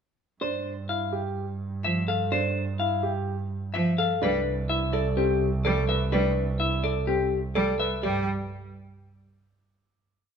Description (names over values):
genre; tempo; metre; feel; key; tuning
classical, minimalist pattern music; 126 BPM; 4/4; straight; G mixolydian; A4 = 440 Hz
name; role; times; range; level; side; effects
semi-hollow electric guitar; melody; 0.4-8.3 s; G4 to F5; -28 LUFS; left 8 dB; none
warm grand piano; arpeggios; 0.4-8.3 s; C4 to B4; -31 LUFS; right 7 dB; none
clear double bass; bass; 0.4-8.3 s; C2 to G2; -29 LUFS; right 2 dB; none
clear cello; accompaniment; 1.8-8.3 s; F3 to G3; -29 LUFS; right 2 dB; none
room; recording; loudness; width
moderate recital hall reverb, RT60 1.5 s; close, detailed microphones; -24 LUFS; side -7 dB against mid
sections
0.4-8.0 A section; 8.0-9.9 final chord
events
none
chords
0.4 G7sus2; 4.2 Cmaj9; 8.0 G5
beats
| 0.41 0.89 1.37 1.84 | 2.32 2.80 3.27 3.75 | 4.22 4.70 5.18 5.65 | 6.13 6.61 7.08 7.56 | 8.03